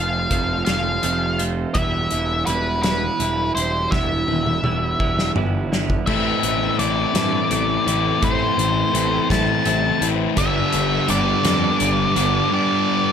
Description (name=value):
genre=quiet-loud alternative rock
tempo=56 BPM (dotted quarters)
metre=6/8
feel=straight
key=A minor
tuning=A4 = 435 Hz
part: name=octave-fuzz lead guitar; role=melody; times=0.0-13.1 s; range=B4 to A5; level=-22 LUFS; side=left 1 dB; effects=distortion, slapback echo
part: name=twelve-string electric guitar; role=arpeggios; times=0.0-10.4 s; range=A2 to F4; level=-25 LUFS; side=right 6 dB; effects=slapback echo
part: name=fuzz picked electric bass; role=bass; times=0.0-12.4 s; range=E1 to G2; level=-25 LUFS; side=equal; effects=overdrive
part: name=loose indie drum kit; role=drums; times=0.3-12.3 s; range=crash cymbal, hi-hat, kick drum, snare drum, toms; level=-24 LUFS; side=left 1 dB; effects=none
part: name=thick fuzz guitar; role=riff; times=6.1-13.1 s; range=G2 to E4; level=-22 LUFS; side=left 12 dB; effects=distortion
part: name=thick fuzz guitar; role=riff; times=10.4-13.1 s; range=G2 to G3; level=-21 LUFS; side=right 11 dB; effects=distortion
room=light reverb, studio ambience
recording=none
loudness=-17 LUFS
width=side -8 dB against mid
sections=0.0-6.1 A section; 6.1-13.1 B section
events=drum fill 3.9-6.1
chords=0.0 F; 1.8 Em; 6.1 Am; 10.4 G